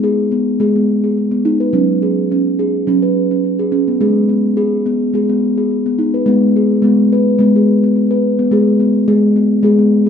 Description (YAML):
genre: world meditative, meditative tuned percussion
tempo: 106 BPM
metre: 4/4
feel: straight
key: G# minor pentatonic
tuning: A4 = 441 Hz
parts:
  - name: steel tongue drum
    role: solo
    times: 0.0-10.1 s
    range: F#3 to B4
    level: -12 LUFS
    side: equal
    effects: ping-pong delay
room: wet recital hall reverb, RT60 1.4 s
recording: none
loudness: -12 LUFS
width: side -7 dB against mid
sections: 0.0-6.3 A section; 6.3-10.1 B section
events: none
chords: 0.0 G#m; 1.7 F#5; 4.0 G#m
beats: 0.04 0.61 1.18 | 1.74 2.31 2.88 3.44 | 4.01 4.57 5.14 5.70 | 6.27 6.83 7.39 7.96 | 8.52 9.08 9.65